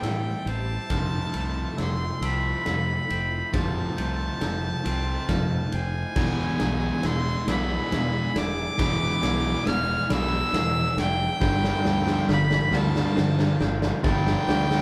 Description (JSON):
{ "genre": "post-rock", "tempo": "46 BPM (dotted quarters)", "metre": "6/8", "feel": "straight", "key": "unclear", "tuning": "A4 = 439 Hz", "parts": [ { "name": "warm violin", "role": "melody", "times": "0.0-14.8 s", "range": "G5 to F6", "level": "-32 LUFS", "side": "equal", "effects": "none" }, { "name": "warm studio string section", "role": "sustained chords", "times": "0.0-14.8 s", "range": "B3 to D5", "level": "-42 LUFS", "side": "equal", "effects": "none" }, { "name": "glockenspiel with hard plastic mallets", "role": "arpeggios", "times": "0.0-14.8 s", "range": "E6 to G#7", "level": "-42 LUFS", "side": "equal", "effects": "none" }, { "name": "semi-hollow electric guitar", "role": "arpeggios", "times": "0.0-14.8 s", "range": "E2 to D4", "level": "-38 LUFS", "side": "equal", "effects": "none" }, { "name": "overdriven electric guitar", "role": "riff", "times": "0.0-14.8 s", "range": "E2 to G3", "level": "-32 LUFS", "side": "equal", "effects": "none" }, { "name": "overdriven fingered electric bass", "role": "bass", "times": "0.0-14.8 s", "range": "E1 to A2", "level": "-32 LUFS", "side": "equal", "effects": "none" }, { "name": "big rock drum kit", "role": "drums", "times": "0.0-14.8 s", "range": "crash cymbal, kick drum, ride cymbal, snare drum", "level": "-31 LUFS", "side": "equal", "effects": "none" }, { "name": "thick fuzz guitar", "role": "riff", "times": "6.2-14.8 s", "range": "G2 to B3", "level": "-33 LUFS", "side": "equal", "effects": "distortion" } ], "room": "moderate large studio reverb, RT60 1.1 s", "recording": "band playing live in one room", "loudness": "-25 LUFS", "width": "mono", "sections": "0.0-14.8 A section", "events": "build-up 0.0-14.8; drum fill 0.0-14.8", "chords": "0.0 Am7; 0.9 Fmaj7; 6.2 E7; 11.4 G7sus4", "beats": "| 0.91 2.22 | 3.53 4.85 | 6.16 7.48 | 8.79 10.10 | 11.42 12.73 | 14.04" }